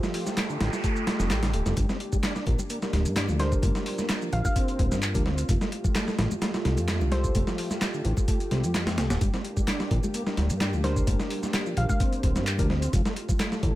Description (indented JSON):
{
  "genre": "breakbeat, breaks",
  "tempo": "129 BPM",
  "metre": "4/4",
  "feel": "swing 53% on 16ths",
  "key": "G minor",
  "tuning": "A4 = 440 Hz",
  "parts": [
    { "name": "dark analog pad", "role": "sustained chords", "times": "0.0-13.8 s", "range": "A3 to G4", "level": "-37 LUFS", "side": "right 1 dB", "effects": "chorus, sidechain pumping" },
    { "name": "tonewheel organ", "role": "riff", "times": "0.0-13.7 s", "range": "D3 to F4", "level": "-34 LUFS", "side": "equal", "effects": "chorus vibrato, slow rotary speaker, tube saturation, vintage 12-bit sampler grit" },
    { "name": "mellow tine electric piano", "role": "stabs", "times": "0.0-12.7 s", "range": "D4 to Bb4", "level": "-36 LUFS", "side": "left 1 dB", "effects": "slow stereo tremolo, dub echo" },
    { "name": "dusty soul sampler-style drum kit", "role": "drums", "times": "0.0-13.7 s", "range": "hi-hat, kick drum, snare drum", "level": "-27 LUFS", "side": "equal", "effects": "overdrive" },
    { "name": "electronic shaker and handclaps", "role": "drums", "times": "0.0-13.6 s", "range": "none", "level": "-35 LUFS", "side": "equal", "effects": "none" },
    { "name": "noise sweep", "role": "sound effects", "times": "0.3-1.8 s", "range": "none", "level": "-37 LUFS", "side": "right 2 dB", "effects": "none" },
    { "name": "fat analog bass", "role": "bass", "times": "0.6-13.7 s", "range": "D1 to G2", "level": "-26 LUFS", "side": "equal", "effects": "none" },
    { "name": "congas", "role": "percussion", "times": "1.8-13.7 s", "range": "none", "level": "-37 LUFS", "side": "left 2 dB", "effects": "none" },
    { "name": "glassy wavetable pluck", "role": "melody", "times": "3.4-7.3, 10.8-12.0 s", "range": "C5 to F5", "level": "-37 LUFS", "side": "equal", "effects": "chorus, telephone sound, dub echo" }
  ],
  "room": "little or no reverb",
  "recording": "none",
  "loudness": "-24 LUFS",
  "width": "side -15 dB against mid",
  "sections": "0.0-13.8 A section",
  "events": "noise sweep 0.3-1.8",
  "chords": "0.0 Fadd9; 1.8 Gm; 5.5 Fadd9; 9.2 Gm; 12.9 Fadd9",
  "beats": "0.38 0.84 1.30 | 1.77 2.23 2.70 3.17 | 3.63 4.09 4.56 5.03 | 5.49 5.96 6.42 6.89 | 7.35 7.82 8.28 8.75 | 9.21 9.68 10.14 10.61 | 11.07 11.54 12.00 12.47 | 12.93 13.40"
}